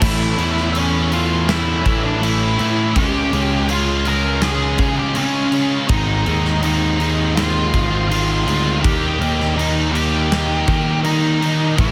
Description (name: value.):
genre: quiet-loud alternative rock.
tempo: 82 BPM.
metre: 4/4.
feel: straight.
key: unclear.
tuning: A4 = 440 Hz.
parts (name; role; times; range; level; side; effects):
octave-fuzz lead guitar; melody; 0.0-11.9 s; C#4 to Bb5; -24 LUFS; equal; distortion, plate reverb.
bright tonewheel organ; sustained chords; 0.0-11.9 s; none; barely audible; none; none.
overdriven electric guitar; riff; 0.0-11.9 s; Ab2 to Eb4; -29 LUFS; equal; none.
overdriven electric guitar; riff; 0.0-11.9 s; Ab2 to Eb4; -29 LUFS; equal; none.
tight distorted guitar; riff; 0.0-11.9 s; Ab2 to F4; -28 LUFS; equal; distortion.
fuzz picked electric bass; bass; 0.0-11.9 s; Ab1 to Eb3; -22 LUFS; equal; overdrive.
huge arena drum kit; drums; 0.0-11.9 s; crash cymbal, kick drum, snare drum; -25 LUFS; equal; none.
room: light reverb.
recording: none.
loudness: -18 LUFS.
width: mono.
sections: 0.0-11.9 A section.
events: none.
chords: 0.0 A; 3.0 Db; 5.9 Ab; 8.8 Eb.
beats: | 0.01 0.75 1.49 2.22 | 2.96 3.69 4.43 5.16 | 5.90 6.63 7.37 8.10 | 8.84 9.57 10.31 11.05 | 11.78.